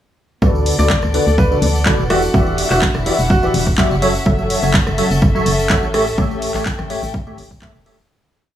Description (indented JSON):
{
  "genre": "piano house",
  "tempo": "125 BPM",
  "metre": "4/4",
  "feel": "straight",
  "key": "D major",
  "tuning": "A4 = 441 Hz",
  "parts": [
    { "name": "percussive organ stab", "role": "riff", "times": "0.4-8.0 s", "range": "D3 to E5", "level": "-19 LUFS", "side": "equal", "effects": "ensemble chorus, sidechain pumping, tape echo" },
    { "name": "organ-like FM bass", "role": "bass", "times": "0.4-8.0 s", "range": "E1 to D2", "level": "-20 LUFS", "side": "equal", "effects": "tube saturation, sidechain pumping" },
    { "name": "electronic kick drum", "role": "drums", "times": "0.4-7.7 s", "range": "none", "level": "-18 LUFS", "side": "equal", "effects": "studio reverb" },
    { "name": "tambourine and congas", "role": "percussion", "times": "0.4-8.1 s", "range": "none", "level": "-26 LUFS", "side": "left 3 dB", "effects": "none" },
    { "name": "dark studio string section", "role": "texture", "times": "0.4-8.1 s", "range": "B3 to G5", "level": "-24 LUFS", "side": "left 2 dB", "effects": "sidechain pumping" },
    { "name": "house drum kit", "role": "drums", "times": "0.7-8.0 s", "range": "handclaps, hi-hat, rim click", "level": "-22 LUFS", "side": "equal", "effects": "studio reverb" },
    { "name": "bright concert grand piano", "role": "melody", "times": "0.8-3.7 s", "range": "F#4 to D5", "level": "-22 LUFS", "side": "right 1 dB", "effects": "tape echo" }
  ],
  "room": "light reverb",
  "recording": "small room ambience",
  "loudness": "-13 LUFS",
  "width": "side -11 dB against mid",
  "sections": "0.4-8.1 groove",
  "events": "fade-out 5.5-8.1",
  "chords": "0.4 D6; 2.1 Em9; 4.0 F#m7; 5.9 A7",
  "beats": "| 0.42 0.90 1.38 1.86 | 2.34 2.82 3.30 3.78 | 4.26 4.74 5.22 5.70 | 6.18 6.66 7.14 7.62"
}